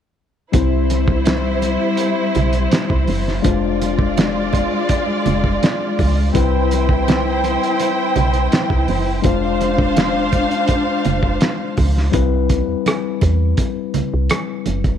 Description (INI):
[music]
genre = lush 1970s-style soul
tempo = 83 BPM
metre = 4/4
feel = straight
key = C major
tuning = A4 = 439 Hz
[part]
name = warm symphonic string section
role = second line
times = 0.5-12.1 s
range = G3 to G5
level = -20 LUFS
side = right 1 dB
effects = none
[part]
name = mellow tine electric piano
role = accompaniment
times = 0.5-15.0 s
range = G3 to C5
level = -22 LUFS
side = left 12 dB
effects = medium stereo tremolo
[part]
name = woody FM bass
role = bass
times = 0.5-15.0 s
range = F1 to E2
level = -19 LUFS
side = right 1 dB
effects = none
[part]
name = cloth-damped thuddy drum kit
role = drums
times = 0.5-15.0 s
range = hi-hat, kick drum, rim click, snare drum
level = -20 LUFS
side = right 1 dB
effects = none
[part]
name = congas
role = percussion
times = 0.5-14.8 s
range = none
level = -27 LUFS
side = right 10 dB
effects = none
[sound]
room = light reverb, small room ambience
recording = 1960s-style stereo with parts hard left and right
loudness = -15 LUFS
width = side -9 dB against mid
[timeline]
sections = 0.5-12.1 A section; 12.1-15.0 B section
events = none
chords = 0.5 C; 3.4 Fm6; 6.3 Cmaj7; 9.2 Fm6; 12.1 Cmaj7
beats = | 0.54 1.26 1.99 2.72 | 3.44 4.17 4.89 5.62 | 6.34 7.07 7.79 8.52 | 9.24 9.96 10.69 11.41 | 12.14 12.86 13.59 14.31